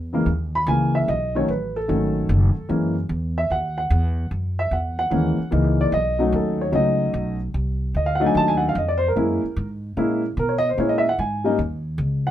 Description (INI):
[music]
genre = jazz piano trio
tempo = 148 BPM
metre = 4/4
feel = swing 67% on 8ths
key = unclear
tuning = A4 = 439 Hz
[part]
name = upright bass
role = bass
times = 0.0-12.3 s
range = F#1 to B2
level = -24 LUFS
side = equal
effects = none
[part]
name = dark upright piano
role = melody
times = 0.1-12.3 s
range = C#3 to B5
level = -20 LUFS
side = equal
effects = none
[sound]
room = light reverb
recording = minimal, uncompressed stereo recording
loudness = -19 LUFS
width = side -12 dB against mid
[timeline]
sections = 0.0-12.3 A section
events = upright piano solo 0.0-12.3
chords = 0.0 F#7 (rootless); 1.1 B7; 2.7 F#7; 5.9 B7; 7.5 Cdim7; 9.2 F#7; 10.8 A#m7b5; 11.6 C#sus2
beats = 0.27 0.67 | 1.07 1.48 1.88 2.29 | 2.69 3.09 3.50 3.90 | 4.30 4.71 5.11 5.52 | 5.92 6.33 6.73 7.13 | 7.54 7.94 8.35 8.75 | 9.15 9.56 9.96 10.37 | 10.77 11.18 11.58 11.98